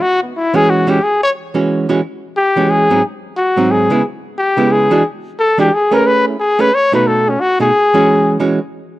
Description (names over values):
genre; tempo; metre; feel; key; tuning
jazz; 179 BPM; 3/4; swing 64% on 8ths; E major; A4 = 440 Hz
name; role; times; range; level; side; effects
warm trumpet; melody; 0.0-8.4 s; B3 to C#5; -13 LUFS; left 2 dB; none
archtop guitar, miked and amplified; accompaniment; 0.5-8.6 s; G#2 to B4; -15 LUFS; right 3 dB; none
room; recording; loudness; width
light reverb, small room ambience; dry, close 1970s-style studio recording; -11 LUFS; side -16 dB against mid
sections
0.0-2.0 A section; 2.0-9.0 B section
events
trumpet solo 2.0-9.0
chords
0.0 E69; 3.0 G#7; 4.0 C#m7; 5.0 E9; 6.0 Amaj9; 7.0 B7; 8.0 E69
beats
0.33 0.66 | 1.00 1.33 1.67 | 2.01 2.34 2.68 | 3.01 3.35 3.69 | 4.02 4.36 4.69 | 5.03 5.36 5.70 | 6.04 6.37 6.71 | 7.04 7.38 7.71 | 8.05 8.38